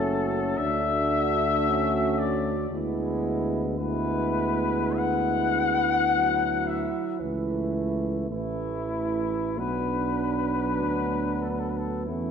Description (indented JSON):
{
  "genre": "classical, hymn-like piece for brass band",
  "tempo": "43-58 BPM",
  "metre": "4/4",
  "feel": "rubato",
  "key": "unclear",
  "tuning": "A4 = 440 Hz",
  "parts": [
    { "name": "warm flugelhorn", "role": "melody", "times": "0.0-12.3 s", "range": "E4 to F#5", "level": "-28 LUFS", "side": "left 6 dB", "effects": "none" },
    { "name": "warm French horn section", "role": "second line", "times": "0.0-12.3 s", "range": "C#4 to F#4", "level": "-30 LUFS", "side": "right 8 dB", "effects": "none" },
    { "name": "clear euphonium", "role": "accompaniment", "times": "0.0-12.3 s", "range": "A3 to D4", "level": "-32 LUFS", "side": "left 1 dB", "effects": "none" },
    { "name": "clear trombone", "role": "accompaniment", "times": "0.0-12.3 s", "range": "E3 to A3", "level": "-34 LUFS", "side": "right 2 dB", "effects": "none" },
    { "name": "mellow tuba", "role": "bass", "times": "0.0-12.3 s", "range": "F#1 to E2", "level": "-31 LUFS", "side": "left 1 dB", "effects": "none" }
  ],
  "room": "wet scoring stage reverb, RT60 2.0 s",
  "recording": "dark, warm production",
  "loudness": "-24 LUFS",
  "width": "side -7 dB against mid",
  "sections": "0.0-12.3 A section",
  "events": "none",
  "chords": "0.0 F#m; 0.6 D; 2.7 E7/D; 7.2 A/C#; 9.6 Bm",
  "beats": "0.58 1.68 | 2.71 3.79 4.98 6.10 | 7.21 8.30 9.58 10.79 | 12.08"
}